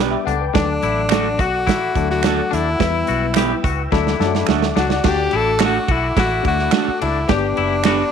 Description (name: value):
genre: uptempo 1960s-style soul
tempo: 107 BPM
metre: 4/4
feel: straight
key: D major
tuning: A4 = 440 Hz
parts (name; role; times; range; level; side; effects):
- barky reed electric piano; accompaniment; 0.0-8.1 s; F3 to G5; -24 LUFS; left 13 dB; overdrive, fast tremolo
- mellow tonewheel organ; sustained chords; 0.0-8.1 s; A4 to E6; -31 LUFS; equal; chorus vibrato, lush chorus
- electric guitar through a small old amp; stabs; 0.0-8.0 s; A3 to B4; -22 LUFS; right 15 dB; none
- vintage muted fingered electric bass; bass; 0.0-8.0 s; F#1 to F#2; -24 LUFS; equal; none
- twangy electric guitar; riff; 0.3-8.0 s; D4 to G4; -25 LUFS; left 13 dB; analog chorus
- natural country drum kit; drums; 0.3-8.0 s; crash cymbal, hi-hat, kick drum, ride cymbal, snare drum; -20 LUFS; right 5 dB; none
- breathy tenor saxophone; melody; 0.6-8.1 s; D4 to A4; -21 LUFS; left 2 dB; tape echo
- finger snaps; percussion; 1.1-8.0 s; none; -27 LUFS; right 13 dB; none
room: light reverb, studio reverb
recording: 1960s-style stereo with parts hard left and right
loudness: -15 LUFS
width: side -7 dB against mid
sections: 0.0-5.1 A section; 5.1-8.1 A section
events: drum fill 3.9-5.1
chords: 0.0 G; 0.6 D; 2.8 Em; 3.9 D; 7.3 G